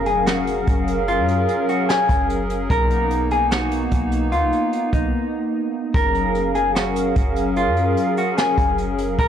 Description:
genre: hip hop, atmospheric cloud-rap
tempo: 148 BPM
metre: 4/4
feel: half-time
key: F# major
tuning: A4 = 439 Hz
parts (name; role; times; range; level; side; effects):
- mellow electric guitar; melody; 0.0-9.3 s; D#4 to A#4; -22 LUFS; left 1 dB; analog delay
- hollow soft pad; sustained chords; 0.0-9.3 s; F#3 to E#5; -22 LUFS; equal; chorus, sidechain pumping
- warm 808-style bass; bass; 0.0-9.3 s; F#1 to F#2; -25 LUFS; equal; none
- impact; sound effects; 0.0-1.1 s; none; -40 LUFS; equal; none
- jazz brush drum kit; drums; 0.1-9.3 s; hi-hat, kick drum, snare drum; -23 LUFS; equal; none
room: light reverb, small room ambience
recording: dry, gritty hardware recording, cassette tape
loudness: -17 LUFS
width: side -9 dB against mid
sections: 0.0-9.3 A section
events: impact 0.0-1.1; break 5.1-5.9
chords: 0.0 F#maj7; 2.7 Bmaj7; 5.9 F#maj7

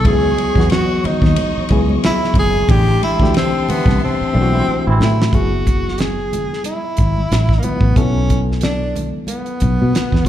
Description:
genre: R&B, neo-soul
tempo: 91 BPM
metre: 4/4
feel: swing 59% on 16ths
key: F# minor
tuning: A4 = 441 Hz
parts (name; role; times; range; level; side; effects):
- breathy tenor saxophone; melody; 0.0-10.3 s; A#3 to G#4; -20 LUFS; equal; slapback echo
- reed electric piano; accompaniment; 0.0-10.3 s; E3 to B4; -22 LUFS; left 3 dB; fast tremolo, slapback echo
- warm studio string section; sustained chords; 0.0-5.3 s; C#5 to C#6; -29 LUFS; left 1 dB; none
- fingered electric bass; bass; 0.0-10.3 s; F#1 to B2; -17 LUFS; equal; none
- damped 70s drum kit; drums; 0.0-10.3 s; hi-hat, kick drum, ride cymbal, snare drum; -18 LUFS; equal; none
- congas; percussion; 0.0-10.3 s; none; -28 LUFS; right 3 dB; none
- muted trombone section; stabs; 4.5-5.1 s; E3 to E4; -24 LUFS; right 2 dB; slapback echo
room: studio ambience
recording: live gig heard through the venue's PA, club reverb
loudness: -13 LUFS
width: side -11 dB against mid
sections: 0.0-5.3 A section; 5.3-10.3 B section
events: band accent 2.7-5.3; drum fill 4.0-5.3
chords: 0.0 C#m9; 2.7 Am7; 5.3 F#m9; 8.0 Bsus2

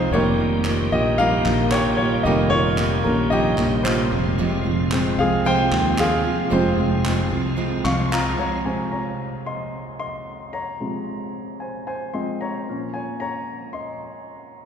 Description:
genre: piano-driven pop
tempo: 112 BPM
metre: 4/4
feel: straight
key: F minor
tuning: A4 = 441 Hz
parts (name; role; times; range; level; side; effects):
- warm grand piano; accompaniment; 0.0-14.7 s; Bb2 to Db6; -22 LUFS; left 1 dB; none
- tonewheel organ; sustained chords; 0.0-8.6 s; C3 to G4; -31 LUFS; equal; chorus vibrato, slow rotary speaker
- picked steel-string acoustic guitar; riff; 0.0-8.7 s; F2 to F4; -25 LUFS; right 4 dB; none
- sustaining fretless electric bass; bass; 0.1-8.3 s; F1 to Eb2; -25 LUFS; left 1 dB; none
- group handclap; percussion; 0.6-8.2 s; none; -31 LUFS; right 1 dB; none
room: wet cathedral reverb, RT60 5.0 s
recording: recorded in a church or concert hall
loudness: -19 LUFS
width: side -7 dB against mid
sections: 0.0-8.7 A section; 8.7-14.7 B section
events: grand piano solo 0.0-8.7, 8.7-14.7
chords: 0.1 Eb/F; 4.1 Fm; 12.7 Bbm

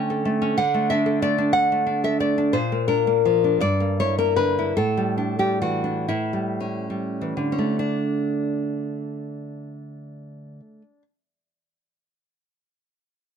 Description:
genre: romantic piece for solo classical guitar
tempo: 32-62 BPM (dotted quarters)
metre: 6/8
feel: rubato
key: D major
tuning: A4 = 437 Hz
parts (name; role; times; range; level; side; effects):
- nylon-string guitar; solo; 0.0-11.0 s; G2 to G5; -21 LUFS; equal; none
room: moderate studio reverb, RT60 0.6 s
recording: dark, warm production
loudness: -20 LUFS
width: side -7 dB against mid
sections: 0.0-7.8 A section; 7.8-13.4 B section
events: slowing down 1.5-7.8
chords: 0.0 A7/D; 0.6 D5; 2.6 Bb; 3.6 Em7b5/G; 4.8 A7sus4; 6.1 A7; 7.8 D5

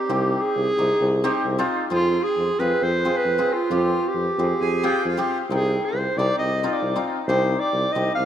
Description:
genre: klezmer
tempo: 134 BPM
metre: 4/4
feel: straight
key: C harmonic minor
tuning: A4 = 440 Hz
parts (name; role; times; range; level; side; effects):
- warm clarinet; melody; 0.0-8.3 s; F4 to F5; -22 LUFS; right 1 dB; tape echo
- hammered dulcimer; accompaniment; 0.1-8.2 s; C4 to G5; -26 LUFS; left 2 dB; none
- warm tuba; bass; 0.1-8.3 s; C2 to F2; -25 LUFS; equal; none
- accordion; second line; 4.6-5.4 s; F4 to Ab4; -29 LUFS; right 4 dB; none
room: wet plate reverb, RT60 3.4 s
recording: dreamy mix soaked in reverb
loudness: -19 LUFS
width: side -10 dB against mid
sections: 0.0-8.3 A section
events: speeding up 0.0-8.3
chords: 0.0 Cm; 1.9 Fm; 5.5 Cm

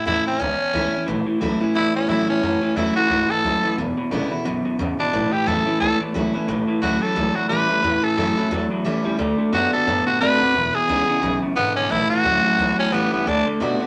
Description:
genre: rockabilly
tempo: 177 BPM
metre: 4/4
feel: swing 58% on 8ths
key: A major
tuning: A4 = 440 Hz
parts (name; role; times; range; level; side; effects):
- raspy tenor saxophone; melody; 0.0-13.5 s; B3 to B4; -23 LUFS; equal; none
- picked steel-string acoustic guitar; accompaniment; 0.0-13.9 s; E2 to F#4; -29 LUFS; equal; none
- upright bass; bass; 0.1-13.8 s; E1 to B2; -33 LUFS; equal; none
- electric guitar through a small old amp; riff; 1.1-13.9 s; E2 to C4; -24 LUFS; equal; none
room: moderate studio reverb, RT60 0.7 s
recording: none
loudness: -20 LUFS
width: mono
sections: 0.0-6.5 A section; 6.5-13.9 B section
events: tenor saxophone solo 6.5-13.9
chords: 0.0 A; 3.8 E7; 5.1 A; 9.2 D; 10.5 E7; 11.9 A; 13.3 D

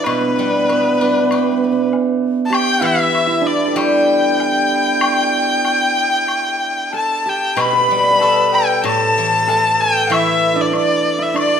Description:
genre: chinese traditional, Chinese chamber ensemble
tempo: 96 BPM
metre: 4/4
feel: rubato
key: G gong mode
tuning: A4 = 441 Hz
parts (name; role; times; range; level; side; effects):
- clear erhu; melody; 0.0-11.6 s; B4 to B5; -17 LUFS; equal; none
- bright dizi; second line; 0.0-11.6 s; B4 to B5; -21 LUFS; left 6 dB; none
- hammered dulcimer; second line; 0.0-11.6 s; B3 to B4; -20 LUFS; right 6 dB; none
- steel-string zither; accompaniment; 0.0-11.6 s; A2 to G4; -20 LUFS; left 4 dB; none
- woodblock; percussion; 0.1-11.5 s; none; -26 LUFS; left 2 dB; none
room: moderate recital hall reverb, RT60 1.7 s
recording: none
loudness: -13 LUFS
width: side -7 dB against mid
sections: 0.0-7.6 A section; 7.6-11.6 B section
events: none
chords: none

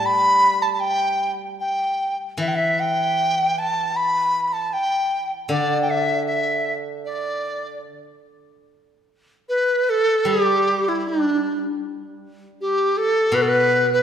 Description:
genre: chinese traditional, Chinese chamber ensemble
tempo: 77 BPM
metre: 2/4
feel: rubato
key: unclear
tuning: A4 = 440 Hz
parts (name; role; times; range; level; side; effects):
- large dizi; melody; 0.0-14.0 s; D4 to B5; -19 LUFS; equal; none
- steel-string zither; accompaniment; 0.0-7.8, 10.2-14.0 s; B2 to G3; -27 LUFS; left 1 dB; none
room: wet scoring stage reverb, RT60 1.8 s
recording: none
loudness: -18 LUFS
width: side -9 dB against mid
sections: 0.0-8.7 A section; 8.7-14.0 B section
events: none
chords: none

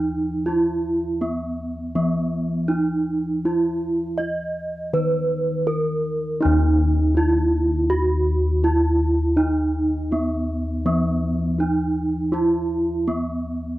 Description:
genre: Javanese gamelan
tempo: 81 BPM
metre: 4/4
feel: straight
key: Eb pelog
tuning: A4 = 441 Hz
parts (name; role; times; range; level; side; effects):
- gamelan-type bronze metallophone; melody; 0.0-13.8 s; Cb4 to Eb5; -22 LUFS; right 2 dB; none
- gamelan-type bossed gongs; bass; 0.0-13.2 s; Eb2 to Fb4+35c; -23 LUFS; left 1 dB; none
room: light reverb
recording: dry, close 1970s-style studio recording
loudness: -19 LUFS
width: side -16 dB against mid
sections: 0.0-6.4 A section; 6.4-13.8 A section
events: none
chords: none

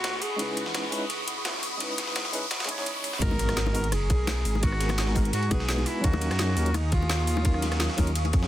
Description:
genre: liquid drum and bass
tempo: 170 BPM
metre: 4/4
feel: swing 53% on 16ths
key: G# minor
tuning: A4 = 442 Hz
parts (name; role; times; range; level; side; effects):
- breathy tenor saxophone; melody; 0.0-0.7, 3.2-8.0 s; D#4 to A#4; -34 LUFS; equal; vintage 12-bit sampler grit, dub echo
- ethereal airy pad; sustained chords; 0.0-8.5 s; G#4 to D#6; -37 LUFS; right 1 dB; ensemble chorus, built-in reverb, sidechain pumping
- dark detuned saw bass; bass; 0.0-8.5 s; F#1 to G#2; -27 LUFS; equal; none
- breakbeat sampler-style drum kit; drums; 0.0-8.5 s; ride cymbal, snare drum; -34 LUFS; right 1 dB; high-pass filter on cymbals, high-pass filter on snare, high-pass filter on room
- garage drum kit; drums; 0.0-8.4 s; hi-hat, rim click, snare drum; -33 LUFS; left 1 dB; none
- riser and impact; sound effects; 0.0-4.6 s; none; -34 LUFS; equal; none
- mellow tine electric piano; accompaniment; 0.4-8.5 s; F#3 to E#5; -34 LUFS; equal; medium tremolo
- electronic kick drum; drums; 3.2-8.4 s; none; -25 LUFS; equal; none
- bongos; percussion; 3.3-8.3 s; none; -34 LUFS; left 5 dB; none
room: little or no reverb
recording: dense, heavily limited modern master, high-pass filter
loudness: -24 LUFS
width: side -13 dB against mid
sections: 0.0-3.2 A section; 3.2-8.5 B section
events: build-up 0.0-3.2; riser 0.0-3.2; filter sweep on tine electric piano 0.0-3.2; drop 3.2-8.5; impact 3.2-4.6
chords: 0.4 C#m9; 3.2 G#m9; 6.0 D#m9

